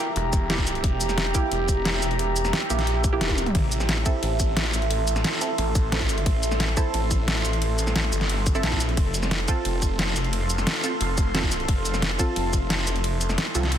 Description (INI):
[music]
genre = dark technical drum and bass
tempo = 177 BPM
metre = 4/4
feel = straight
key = unclear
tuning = A4 = 441 Hz
[part]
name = deep dark ambient pad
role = sustained chords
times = 0.0-13.8 s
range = G4 to C6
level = -29 LUFS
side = right 2 dB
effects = chorus, built-in reverb, sidechain pumping
[part]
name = filtered dub chord stab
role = stabs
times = 0.0-13.6 s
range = Bb3 to A4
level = -31 LUFS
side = right 3 dB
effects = wide subtle chorus, ping-pong delay
[part]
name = snarling distorted saw bass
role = bass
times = 0.2-13.8 s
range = E1 to C2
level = -26 LUFS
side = equal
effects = distortion, tube saturation, sidechain pumping
[part]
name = dubstep drum kit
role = drums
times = 0.2-13.8 s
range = hi-hat, ride cymbal, shaker, snare drum, toms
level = -26 LUFS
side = equal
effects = none
[part]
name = electronic kick drum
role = drums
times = 0.3-12.6 s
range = none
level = -24 LUFS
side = equal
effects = overdrive
[sound]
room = light reverb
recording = dense, heavily limited modern master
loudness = -21 LUFS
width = side -10 dB against mid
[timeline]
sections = 0.0-13.8 A section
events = drum fill 3.2-3.5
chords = 0.0 Edim; 3.5 Am; 9.0 F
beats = 0.16 0.50 | 0.84 1.18 1.52 1.85 | 2.19 2.53 2.87 3.21 | 3.55 3.89 4.23 4.57 | 4.91 5.24 5.58 5.92 | 6.26 6.60 6.94 7.28 | 7.62 7.96 8.29 8.63 | 8.97 9.31 9.65 9.99 | 10.33 10.67 11.01 11.35 | 11.69 12.02 12.36 12.70 | 13.04 13.38 13.72